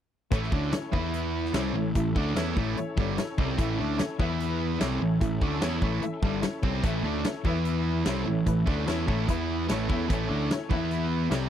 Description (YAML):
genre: classic rock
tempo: 147 BPM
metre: 4/4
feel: straight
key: A mixolydian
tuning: A4 = 440 Hz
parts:
  - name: honky-tonk upright piano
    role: accompaniment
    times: 0.3-11.5 s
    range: E4 to B5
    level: -36 LUFS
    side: left 7 dB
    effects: none
  - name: tonewheel organ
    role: sustained chords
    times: 0.3-11.5 s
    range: B3 to B4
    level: -40 LUFS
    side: right 1 dB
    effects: slow rotary speaker, overdrive, chorus vibrato
  - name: distorted electric guitar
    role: riff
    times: 0.3-11.5 s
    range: G2 to E4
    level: -31 LUFS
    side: right 10 dB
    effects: overdrive
  - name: sludgy distorted guitar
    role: riff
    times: 0.3-11.5 s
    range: G2 to E4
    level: -32 LUFS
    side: left 10 dB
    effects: overdrive
  - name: fuzz picked electric bass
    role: bass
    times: 0.3-11.5 s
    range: G1 to E2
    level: -31 LUFS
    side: equal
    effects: overdrive
  - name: huge arena drum kit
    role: drums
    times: 0.3-11.4 s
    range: hi-hat, kick drum, snare drum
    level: -28 LUFS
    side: equal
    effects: none
room: light reverb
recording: dry, close 1970s-style studio recording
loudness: -25 LUFS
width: side -10 dB against mid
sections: 0.3-11.5 A section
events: honky-tonk piano fill 6.0-6.8, 8.9-10.1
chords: 0.3 A; 0.9 E5; 1.5 A; 4.2 E5; 4.8 A; 7.5 E5; 8.1 A; 9.3 E5; 9.7 A; 10.7 E5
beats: | 0.32 0.73 1.14 1.54 | 1.95 2.36 2.77 3.18 | 3.58 3.99 4.40 4.81 | 5.22 5.63 6.03 6.44 | 6.85 7.26 7.66 8.07 | 8.48 8.88 9.29 9.70 | 10.10 10.51 10.91 11.32